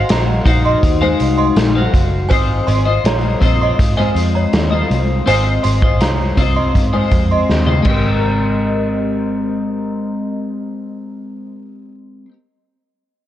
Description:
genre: indie pop, bedroom pop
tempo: 81 BPM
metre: 4/4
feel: straight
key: Ab major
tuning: A4 = 439 Hz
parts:
  - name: synth chime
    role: second line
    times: 0.0-10.4 s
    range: C5 to C6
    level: -22 LUFS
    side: right 3 dB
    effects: ensemble chorus, tremolo, wide subtle chorus, tape echo
  - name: twelve-string electric guitar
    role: accompaniment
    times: 0.0-12.3 s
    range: Ab3 to F5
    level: -18 LUFS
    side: left 3 dB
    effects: lush chorus, warbly pitch drift
  - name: vintage muted picked electric bass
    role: bass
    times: 0.0-12.2 s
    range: Gb1 to Ab2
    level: -18 LUFS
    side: equal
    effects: none
  - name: raw garage drum kit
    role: drums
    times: 0.1-8.0 s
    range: crash cymbal, hi-hat, kick drum, snare drum, toms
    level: -17 LUFS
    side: equal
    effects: vintage 12-bit sampler grit
room: light reverb, small room ambience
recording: cassette tape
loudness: -13 LUFS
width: side -12 dB against mid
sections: 0.0-8.2 A section; 8.2-11.2 B section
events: drum fill 7.5-8.2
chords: 0.0 Ab13; 2.3 Dbmaj9/Ab (rootless); 7.9 Abmaj9

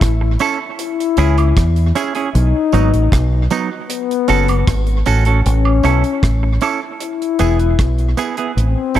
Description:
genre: roots reggae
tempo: 77 BPM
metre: 4/4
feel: straight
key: E major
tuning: A4 = 440 Hz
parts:
  - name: warm trombone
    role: second line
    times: 0.0-9.0 s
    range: B3 to E4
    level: -20 LUFS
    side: left 11 dB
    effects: tape echo
  - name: deep dub fingered electric bass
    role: bass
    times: 0.0-9.0 s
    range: E1 to E2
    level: -14 LUFS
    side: equal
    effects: none
  - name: deep reggae drum kit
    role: drums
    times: 0.0-9.0 s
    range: hi-hat, kick drum, rim click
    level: -19 LUFS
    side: right 1 dB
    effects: tape echo
  - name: semi-hollow electric guitar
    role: accompaniment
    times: 0.2-9.0 s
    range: F#3 to A4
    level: -20 LUFS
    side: right 7 dB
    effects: spring reverb, tape echo
  - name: tambourine and woodblock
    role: percussion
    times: 0.4-9.0 s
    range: none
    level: -28 LUFS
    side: right 7 dB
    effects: none
room: small room reverb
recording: none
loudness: -13 LUFS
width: side -12 dB against mid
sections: 0.0-7.0 A section; 7.0-9.0 B section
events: none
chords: 0.0 A; 0.8 C#m; 2.3 B; 3.9 F#m; 5.5 A; 7.0 E

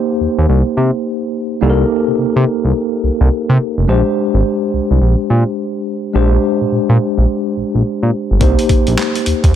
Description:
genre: R&B, new jack swing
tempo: 106 BPM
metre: 4/4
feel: swing 62% on 16ths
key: C minor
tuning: A4 = 439 Hz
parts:
  - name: mellow tine electric piano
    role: accompaniment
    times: 0.0-9.6 s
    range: Ab3 to C5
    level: -16 LUFS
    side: left 1 dB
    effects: medium stereo tremolo
  - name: smooth synth bass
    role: bass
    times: 0.2-9.5 s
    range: F1 to C3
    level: -12 LUFS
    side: equal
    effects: none
  - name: boom bap sampler-style drum kit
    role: drums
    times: 8.4-9.5 s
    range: handclaps, hi-hat, kick drum, snare drum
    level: -14 LUFS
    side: equal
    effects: gated reverb
room: digital ambience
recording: none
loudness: -12 LUFS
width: side -10 dB against mid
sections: 0.0-9.6 A section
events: none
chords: 0.0 Cm7; 3.9 Bb13; 8.4 Cm7

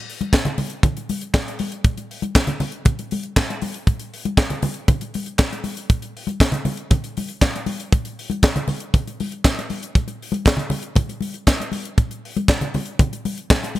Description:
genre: disco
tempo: 118 BPM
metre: 4/4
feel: straight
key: none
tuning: none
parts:
  - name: tight funk drum kit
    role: drums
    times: 0.1-13.8 s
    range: handclaps, hi-hat, kick drum, snare drum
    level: -19 LUFS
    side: equal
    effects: none
  - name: congas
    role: percussion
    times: 0.2-13.8 s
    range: none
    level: -25 LUFS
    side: left 2 dB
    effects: none
room: light reverb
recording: none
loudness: -19 LUFS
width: side -16 dB against mid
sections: 0.0-13.8 A section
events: none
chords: none

